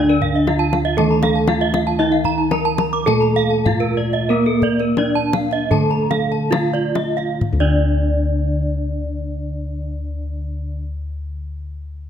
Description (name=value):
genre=Balinese gamelan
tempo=65-118 BPM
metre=4/4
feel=straight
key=D pelog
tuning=A4 = 440 Hz
part: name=gamelan-type bronze metallophone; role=melody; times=0.0-10.8 s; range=Bb3 to Bb4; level=-21 LUFS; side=right 1 dB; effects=none
part: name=gamelan-type bronze metallophone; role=accompaniment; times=0.0-10.8 s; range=D3 to Bb3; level=-25 LUFS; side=right 5 dB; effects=none
part: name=gamelan-type bronze metallophone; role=arpeggios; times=0.0-10.8 s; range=A4 to Bb5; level=-25 LUFS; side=left 7 dB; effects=none
part: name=gamelan-type bossed gongs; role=bass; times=0.0-10.7 s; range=D2 to Bb4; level=-22 LUFS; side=left 2 dB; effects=none
part: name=kendang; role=percussion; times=0.1-7.8 s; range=none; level=-25 LUFS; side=left 3 dB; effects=none
part: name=gamelan-type bronze metallophone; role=arpeggios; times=0.2-10.8 s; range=Bb4 to D6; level=-25 LUFS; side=right 9 dB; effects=none
room=light reverb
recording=close, detailed microphones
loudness=-16 LUFS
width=side -9 dB against mid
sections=0.0-7.4 A section; 7.4-12.1 B section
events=slowing down 2.0-7.4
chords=none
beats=0.47 0.97 1.48 | 1.99 2.51 3.07 3.66 | 4.29 4.98 5.71 6.52 | 7.40 8.32 9.24 10.17